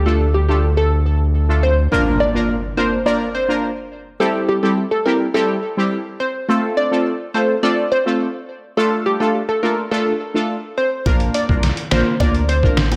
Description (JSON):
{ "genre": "dancehall", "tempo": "105 BPM", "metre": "4/4", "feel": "straight", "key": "unclear", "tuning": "A4 = 440 Hz", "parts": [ { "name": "round analog bass", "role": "bass", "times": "0.0-1.9, 11.1-13.0 s", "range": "A1 to D2", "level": "-19 LUFS", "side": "equal", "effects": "none" }, { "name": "glassy wavetable pluck", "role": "melody", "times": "0.1-12.6 s", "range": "G4 to D5", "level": "-23 LUFS", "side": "equal", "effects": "chorus, tape echo" }, { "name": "synth brass stab", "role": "accompaniment", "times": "0.1-12.8 s", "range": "G3 to Bb4", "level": "-22 LUFS", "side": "equal", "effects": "chorus, phaser, sidechain pumping" }, { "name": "impact", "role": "sound effects", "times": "1.9-4.2 s", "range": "none", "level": "-28 LUFS", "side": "equal", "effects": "none" }, { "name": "trip hop sampler-style drum kit", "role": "drums", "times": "11.1-13.0 s", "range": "hi-hat, kick drum, rim click, snare drum", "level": "-21 LUFS", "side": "equal", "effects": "none" }, { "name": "bongos", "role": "percussion", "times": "11.1-13.0 s", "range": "none", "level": "-31 LUFS", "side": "equal", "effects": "none" } ], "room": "moderate plate reverb, RT60 1.6 s", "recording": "dreamy mix soaked in reverb", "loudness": "-18 LUFS", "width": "mono", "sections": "0.0-1.9 A section; 1.9-13.0 B section", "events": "impact 1.9-4.2", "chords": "0.0 Dm; 1.9 Bb; 4.2 C; 6.5 F; 8.8 Dm; 11.1 Bb" }